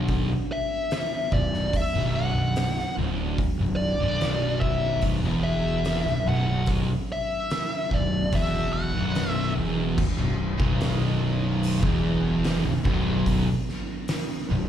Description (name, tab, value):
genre	stoner and doom metal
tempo	73 BPM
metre	4/4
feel	straight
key	B minor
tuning	A4 = 440 Hz
part	deep rumbling drone	sustained chords	0.0-14.7 s	F#3 to D4	-37 LUFS	right 4 dB	none
part	thick fuzz guitar	riff	0.0-14.7 s	B1 to E2	-27 LUFS	left 4 dB	distortion
part	thick fuzz guitar	riff	0.0-14.7 s	B1 to E2	-31 LUFS	right 10 dB	distortion
part	fuzz fingered electric bass	bass	0.0-14.7 s	B0 to E1	-29 LUFS	right 1 dB	overdrive
part	oversized low-tuned drum kit	drums	0.1-14.3 s	crash cymbal, hi-hat, kick drum, snare drum	-29 LUFS	equal	none
part	fuzz lead guitar	melody	0.5-9.5 s	D5 to F#5	-29 LUFS	left 1 dB	wah, distortion, slapback echo, analog delay
part	tight distorted guitar	riff	10.2-14.7 s	B1 to E2	-32 LUFS	right 1 dB	distortion
room	studio reverb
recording	live gig heard through the venue's PA, club reverb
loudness	-22 LUFS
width	side -10 dB against mid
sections	0.0-10.0 A section; 10.0-14.7 B section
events	none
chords	0.0 Bm